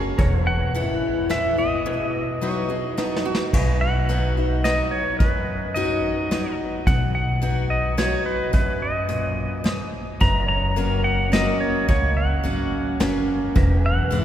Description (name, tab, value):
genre	honky-tonk and classic country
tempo	108 BPM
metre	3/4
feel	straight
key	B major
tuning	A4 = 443 Hz
part	lap resonator guitar	second line	0.0-3.5 s	D#4 to C#5	-34 LUFS	right 4 dB	none
part	picked steel-string acoustic guitar	accompaniment	0.0-14.2 s	E2 to F#4	-26 LUFS	left 2 dB	none
part	pedal steel guitar	sustained chords	0.0-14.2 s	F#4 to F#5	-33 LUFS	right 2 dB	none
part	upright bass	bass	0.0-14.2 s	E1 to F#2	-24 LUFS	equal	none
part	vintage brush drum kit	drums	0.2-14.2 s	crash cymbal, hi-hat, kick drum, snare drum	-26 LUFS	equal	none
part	pedal steel guitar	melody	0.5-14.2 s	B4 to A#5	-26 LUFS	equal	none
room	wet cathedral reverb, RT60 5.3 s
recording	recorded in a church or concert hall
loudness	-19 LUFS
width	side -10 dB against mid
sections	0.0-3.5 A section; 3.5-14.2 A section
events	break 1.9-3.5; drum fill 3.0-3.5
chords	0.2 E; 1.9 B; 10.2 F#; 13.6 E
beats	| 0.19 0.74 1.30 | 1.86 2.42 2.97 | 3.53 4.09 4.64 | 5.20 5.76 6.31 | 6.87 7.43 7.98 | 8.54 9.10 9.65 | 10.21 10.77 11.33 | 11.88 12.44 13.00 | 13.56 14.11